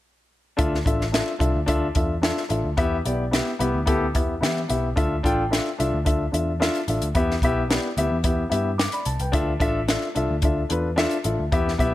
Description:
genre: uptempo 1960s-style soul.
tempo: 110 BPM.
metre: 4/4.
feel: straight.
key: D dorian.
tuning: A4 = 440 Hz.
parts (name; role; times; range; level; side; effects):
dark concert grand piano; accompaniment; 0.6-11.9 s; B3 to D6; -24 LUFS; left 2 dB; none.
vintage muted picked electric bass; bass; 0.6-11.9 s; A1 to E3; -27 LUFS; equal; none.
compact cocktail drum kit; drums; 0.6-11.9 s; hi-hat, kick drum, snare drum; -25 LUFS; equal; none.
room: light reverb, small room ambience.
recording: none.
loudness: -20 LUFS.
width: side -15 dB against mid.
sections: 0.6-5.0 A section; 5.0-11.9 B section.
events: none.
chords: 0.6 Dmadd9; 2.8 Em; 5.0 Dmadd9; 7.2 Em; 9.3 Dmadd9.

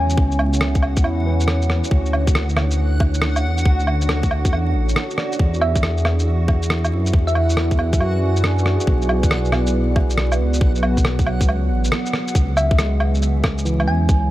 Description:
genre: future garage.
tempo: 138 BPM.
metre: 4/4.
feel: swing 66% on 16ths.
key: unclear.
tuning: A4 = 440 Hz.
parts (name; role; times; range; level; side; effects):
thumb-piano-like synth pluck; melody; 0.0-0.3, 5.6-7.7, 12.6-14.2 s; E5 to G#5; -26 LUFS; equal; wide subtle chorus, cassette tape, tape echo.
overdriven tine electric piano; accompaniment; 0.0-14.3 s; E3 to D5; -27 LUFS; right 2 dB; sidechain pumping, analog delay.
deep dark ambient pad; sustained chords; 0.0-14.3 s; B3 to G#5; -27 LUFS; right 1 dB; chorus, built-in reverb, sidechain pumping.
dark detuned saw bass; bass; 0.0-14.3 s; A1 to F#2; -19 LUFS; equal; sidechain pumping.
backwards swelling texture; texture; 0.1-12.4 s; F#4 to F#5; -32 LUFS; equal; built-in reverb.
electronic shaker, woodblock and rim click; drums; 0.1-14.2 s; none; -24 LUFS; equal; none.
electronic kick drum; drums; 0.2-14.2 s; none; -17 LUFS; equal; none.
room: light reverb, digital ambience.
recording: vinyl crackle.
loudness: -16 LUFS.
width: side -15 dB against mid.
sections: 0.0-12.3 A section; 12.3-14.3 A section.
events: band accent 11.9.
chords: 0.0 C#m; 1.9 Dmaj7; 5.4 E7; 8.9 Bm; 12.3 C#m.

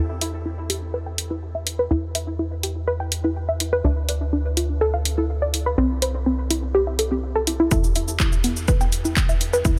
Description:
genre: melodic techno.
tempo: 124 BPM.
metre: 4/4.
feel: straight.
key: unclear.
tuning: A4 = 440 Hz.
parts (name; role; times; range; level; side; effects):
warbly dusty pluck; arpeggios; 0.0-9.7 s; B3 to G5; -26 LUFS; equal; chorus, sidechain pumping, tape echo.
tight sequencer bass; bass; 0.0-9.8 s; C2 to E2; -28 LUFS; equal; sidechain pumping.
house drum kit; drums; 0.2-9.8 s; congas, handclaps, hi-hat, shaker; -27 LUFS; equal; high-pass filter on perc, high-pass filter on hats, high-pass filter on snare.
electronic kick drum; drums; 7.7-9.8 s; none; -22 LUFS; equal; overdrive.
room: light reverb.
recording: none.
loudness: -23 LUFS.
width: mono.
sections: 0.0-9.8 A section.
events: build-up 0.0-9.8.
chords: 0.0 N.C.; 5.8 C; 7.7 N.C..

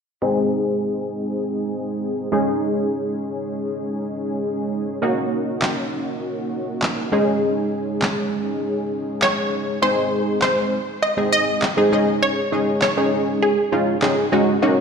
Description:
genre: dance-pop.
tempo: 100 BPM.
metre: 4/4.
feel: straight.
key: unclear.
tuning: A4 = 438 Hz.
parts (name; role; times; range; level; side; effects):
funky polysynth comp; accompaniment; 0.2-14.8 s; Ab3 to Ab4; -20 LUFS; equal; chorus, low-pass filter, slapback echo.
electronic snare drum and handclaps; drums; 5.6-14.2 s; none; -26 LUFS; equal; slapback echo.
wide unison pluck; melody; 9.2-14.3 s; Ab4 to Eb5; -21 LUFS; equal; slapback echo, ping-pong delay.
room: moderate lush hall reverb, RT60 3.2 s.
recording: live gig heard through the venue's PA, recital hall reverb.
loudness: -19 LUFS.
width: side -6 dB against mid.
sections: 0.2-9.8 A section; 9.8-14.8 B section.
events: filter sweep on analog polysynth 0.2-9.8.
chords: 0.2 Ab; 2.3 Dbsus2; 5.0 Ebm7; 7.1 Dbsus2; 9.8 Ab; 11.9 Dbsus2.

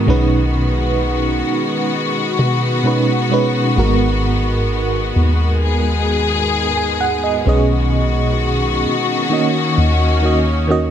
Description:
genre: R&B.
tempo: 65 BPM.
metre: 4/4.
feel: straight.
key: G# minor.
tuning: A4 = 440 Hz.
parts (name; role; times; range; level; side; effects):
FM electric piano with tremolo; accompaniment; 0.0-10.9 s; G#2 to G#5; -18 LUFS; right 2 dB; phaser.
warm studio string section; sustained chords; 0.0-10.9 s; D#3 to G#4; -19 LUFS; left 2 dB; none.
soft 808-style bass; bass; 0.1-10.9 s; G#1 to B2; -18 LUFS; equal; none.
room: light reverb.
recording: none.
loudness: -14 LUFS.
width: side -9 dB against mid.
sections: 0.0-10.9 A section.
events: none.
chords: 0.1 B6; 3.8 G#m7; 7.5 B6; 9.3 D#m7.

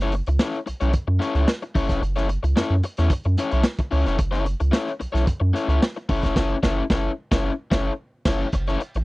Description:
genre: funk.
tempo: 111 BPM.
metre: 4/4.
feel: straight.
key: F# minor.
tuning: A4 = 440 Hz.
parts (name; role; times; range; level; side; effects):
crunchy overdriven guitar; accompaniment; 0.0-9.0 s; C#4 to C#5; -25 LUFS; left 3 dB; none.
round analog bass; bass; 0.0-9.0 s; E#1 to F#2; -22 LUFS; equal; none.
crunchy breakbeat drum kit; drums; 0.0-9.0 s; crash cymbal, hi-hat, kick drum, snare drum; -23 LUFS; equal; vintage 12-bit sampler grit.
room: little or no reverb.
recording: dry, close 1970s-style studio recording.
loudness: -20 LUFS.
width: side -21 dB against mid.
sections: 0.0-8.5 A section.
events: band accent 6.4-8.5.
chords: 0.0 F#m7.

